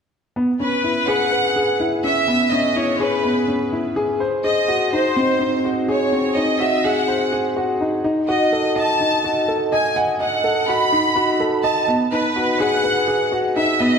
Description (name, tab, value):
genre	piano and strings electronica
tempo	125 BPM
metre	4/4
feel	straight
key	C# minor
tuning	A4 = 440 Hz
part	warm grand piano	riff	0.4-14.0 s	B3 to F#5	-19 LUFS	equal	none
part	clear chamber violin section	melody	0.6-14.0 s	B4 to B5	-20 LUFS	right 1 dB	none
room	wet recital hall reverb, RT60 1.6 s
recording	none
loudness	-16 LUFS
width	side -6 dB against mid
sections	0.4-14.0 A section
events	none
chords	0.4 C#m7; 4.2 G#7; 8.0 D#dim; 11.9 B6